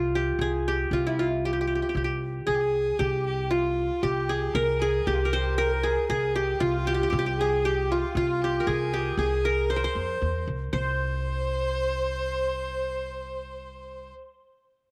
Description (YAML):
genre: arabic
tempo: 116 BPM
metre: 4/4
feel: straight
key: C maqam hijaz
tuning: A4 = 440 Hz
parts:
  - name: qanun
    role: melody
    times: 0.0-14.1 s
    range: E4 to C5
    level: -29 LUFS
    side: equal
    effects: none
  - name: upright bass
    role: bass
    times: 0.0-14.1 s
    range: C2 to F2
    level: -33 LUFS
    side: equal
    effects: none
  - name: bright reedy wooden-headed alto flute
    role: second line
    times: 2.5-14.1 s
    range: F4 to C5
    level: -33 LUFS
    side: equal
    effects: none
  - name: clear violin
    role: second line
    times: 2.5-14.1 s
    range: F4 to C5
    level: -38 LUFS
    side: equal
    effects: none
room: wet spring reverb, RT60 1.7 s, small room ambience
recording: none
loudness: -27 LUFS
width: mono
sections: 0.0-10.7 A section; 10.7-14.9 B section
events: none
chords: none